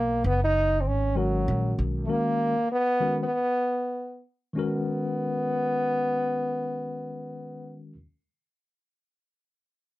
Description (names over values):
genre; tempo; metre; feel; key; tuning
hip hop; 97 BPM; 4/4; swing 59% on 16ths; B major; A4 = 440 Hz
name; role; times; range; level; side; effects
warm French horn; melody; 0.0-7.8 s; F#3 to D#4; -26 LUFS; equal; none
upright bass; bass; 0.0-2.1 s; F#1 to B1; -26 LUFS; equal; none
mellow tine electric piano; accompaniment; 1.2-8.0 s; D#3 to A#4; -30 LUFS; left 2 dB; medium stereo tremolo
room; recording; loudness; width
light reverb; none; -24 LUFS; side -17 dB against mid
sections
0.0-4.6 A section; 4.6-7.0 B section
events
none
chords
0.0 Bmaj9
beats
0.24 0.86 1.48 | 2.10 2.71 3.33 3.95 | 4.57 5.19 5.81 6.43